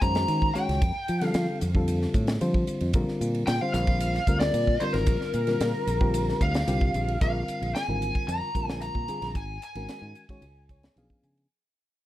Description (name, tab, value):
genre	electric jazz fusion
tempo	112 BPM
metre	4/4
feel	straight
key	Bb mixolydian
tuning	A4 = 440 Hz
part	lead guitar through a small cranked amp	melody	0.0-11.2 s	Bb4 to Bb5	-30 LUFS	left 1 dB	overdrive
part	reed electric piano	accompaniment	0.0-11.5 s	D3 to Ab5	-31 LUFS	left 1 dB	none
part	fingered electric bass	bass	0.0-11.5 s	Ab1 to F3	-28 LUFS	equal	none
part	crisp fusion drum kit	drums	0.0-11.5 s	hi-hat, kick drum, ride cymbal, snare drum	-29 LUFS	equal	none
room	light reverb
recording	dark, warm production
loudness	-24 LUFS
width	side -14 dB against mid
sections	0.0-7.2 A section; 7.2-11.5 B section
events	reed electric piano fill 2.1-2.9, 10.4-11.5; fade-out 7.2-11.5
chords	0.0 Ebm7; 0.8 Fadd9; 2.9 Bbadd9; 7.2 Bb9; 9.4 Absus2; 10.4 Db7b9